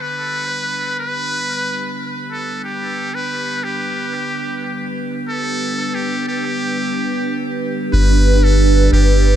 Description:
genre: ambient dub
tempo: 91 BPM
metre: 4/4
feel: straight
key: G major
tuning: A4 = 441 Hz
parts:
  - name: trumpet with metal mute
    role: melody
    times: 0.0-9.4 s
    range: G4 to B4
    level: -22 LUFS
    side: equal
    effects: dub echo
  - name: deep dark ambient pad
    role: sustained chords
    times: 0.0-9.4 s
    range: D4 to B4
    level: -21 LUFS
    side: right 2 dB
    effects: chorus, built-in reverb
  - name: soft dub sub bass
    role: bass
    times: 7.9-9.4 s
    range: G1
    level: -12 LUFS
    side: equal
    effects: none
room: light reverb, small room ambience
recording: dark, warm production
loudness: -16 LUFS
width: side -10 dB against mid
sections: 0.0-7.9 A section; 7.9-9.4 B section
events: filter sweep on ambient pad 0.0-7.9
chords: 0.0 G

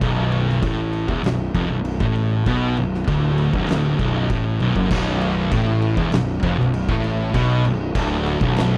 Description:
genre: stoner and doom metal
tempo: 98 BPM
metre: 4/4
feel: straight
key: B minor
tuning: A4 = 440 Hz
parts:
  - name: thick fuzz guitar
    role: riff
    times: 0.0-8.8 s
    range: B1 to B2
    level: -25 LUFS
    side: equal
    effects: distortion
  - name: thick fuzz guitar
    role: riff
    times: 0.0-8.8 s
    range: B1 to B2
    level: -26 LUFS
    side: equal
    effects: distortion
  - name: fuzz fingered electric bass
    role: bass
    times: 0.0-8.8 s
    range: B0 to B1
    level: -27 LUFS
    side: equal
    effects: overdrive, tube saturation
  - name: oversized low-tuned drum kit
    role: drums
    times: 0.0-8.7 s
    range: crash cymbal, kick drum, snare drum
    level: -28 LUFS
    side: equal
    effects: none
  - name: sludgy distorted guitar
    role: riff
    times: 4.9-8.8 s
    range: B1 to B2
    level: -29 LUFS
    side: equal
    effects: overdrive
room: little or no reverb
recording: dry, close 1970s-style studio recording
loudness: -20 LUFS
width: mono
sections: 0.0-4.9 A section; 4.9-8.8 B section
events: none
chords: 0.0 Bm

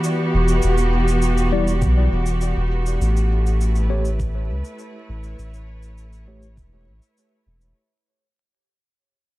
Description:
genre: ambient dub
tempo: 101 BPM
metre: 4/4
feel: straight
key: unclear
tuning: A4 = 435 Hz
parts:
  - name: clear symphonic string section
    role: sustained chords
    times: 0.0-7.8 s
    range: E3 to C#5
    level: -23 LUFS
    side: right 1 dB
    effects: none
  - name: cabasa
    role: drums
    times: 0.0-7.7 s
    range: none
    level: -37 LUFS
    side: left 2 dB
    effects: none
  - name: soft dub sub bass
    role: bass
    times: 0.3-7.7 s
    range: E1 to C#2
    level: -20 LUFS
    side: equal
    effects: tube saturation
  - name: tine electric piano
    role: stabs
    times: 1.5-6.5 s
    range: G3 to D5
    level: -29 LUFS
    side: left 3 dB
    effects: medium stereo tremolo, low-pass filter, dub echo
  - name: electronic kick drum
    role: drums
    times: 1.8-6.7 s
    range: none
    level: -25 LUFS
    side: equal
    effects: none
room: light reverb, studio ambience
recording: dark, warm production, vinyl crackle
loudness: -17 LUFS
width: side -17 dB against mid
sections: 0.0-7.8 A section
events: fade-out 0.0-7.8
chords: 0.0 Em; 3.0 A7

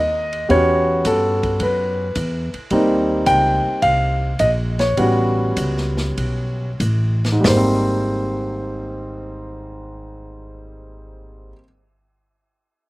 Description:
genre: jazz piano trio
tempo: 92-108 BPM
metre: 4/4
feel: swing 69% on 8ths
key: Ab major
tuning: A4 = 440 Hz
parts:
  - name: warm grand piano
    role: melody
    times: 0.0-11.6 s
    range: Ab2 to G5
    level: -18 LUFS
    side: equal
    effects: none
  - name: upright bass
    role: bass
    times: 0.0-11.5 s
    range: Ab1 to G2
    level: -23 LUFS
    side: equal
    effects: none
  - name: vintage drum kit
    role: drums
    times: 0.3-7.7 s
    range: hi-hat, kick drum, ride cymbal, snare drum, toms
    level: -28 LUFS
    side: equal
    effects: none
room: little or no reverb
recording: recorded outdoors, with no room sound, faint mains hum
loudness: -16 LUFS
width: side -19 dB against mid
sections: 0.0-7.4 A section; 7.4-10.1 B section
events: slowing down 2.7-7.4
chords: 0.5 A13; 2.7 Cm7; 5.0 A13; 7.4 Abmaj9

